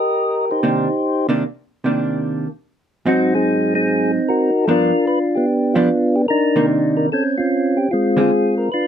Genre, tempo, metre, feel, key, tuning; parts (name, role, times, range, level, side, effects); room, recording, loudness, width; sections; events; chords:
jazz; 149 BPM; 4/4; swing 64% on 8ths; C minor; A4 = 439 Hz
percussive tonewheel organ; melody; 0.0-8.9 s; Ab3 to Eb5; -16 LUFS; equal; slow rotary speaker
vintage hollow-body jazz guitar; accompaniment; 0.6-8.3 s; G2 to F4; -19 LUFS; right 2 dB
little or no reverb; close, detailed microphones; -15 LUFS; side -9 dB against mid
0.0-8.9 A section
0.0 Cm9; 3.1 Ab7; 4.7 G7; 6.3 Cm9; 7.1 A7alt/B#; 7.9 Dm7b5